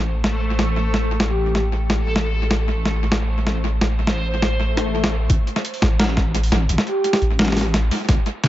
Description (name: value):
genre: half-time drum and bass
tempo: 172 BPM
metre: 4/4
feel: half-time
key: A minor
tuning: A4 = 440 Hz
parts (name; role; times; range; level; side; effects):
- deep soft wobble bass; bass; 0.0-8.2 s; A1; -21 LUFS; equal; chorus
- backwards swelling texture; texture; 0.0-5.3 s; A3 to C5; -28 LUFS; right 1 dB; built-in reverb
- boom bap sampler-style drum kit; drums; 0.2-8.5 s; hi-hat, snare drum; -22 LUFS; equal; overdrive, analog delay
- breathy flute-like synth lead; melody; 1.3-1.6, 6.9-7.2 s; G4; -26 LUFS; equal; lush chorus, analog delay
- swell; sound effects; 4.7-5.3 s; none; -27 LUFS; left 5 dB; none
- electronic kick drum; drums; 5.3-8.2 s; none; -19 LUFS; equal; overdrive
room: light reverb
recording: echo-heavy mix, nothing above 7.7 kHz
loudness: -17 LUFS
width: side -14 dB against mid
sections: 0.0-5.3 A section; 5.3-8.5 B section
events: swell 4.7-5.3; drop 5.3-8.5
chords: 0.0 Am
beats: 0.06 0.41 0.76 | 1.11 1.46 1.81 2.16 | 2.51 2.85 3.20 3.55 | 3.90 4.25 4.60 4.95 | 5.30 5.64 5.99 6.34 | 6.69 7.04 7.39 7.74 | 8.09 8.44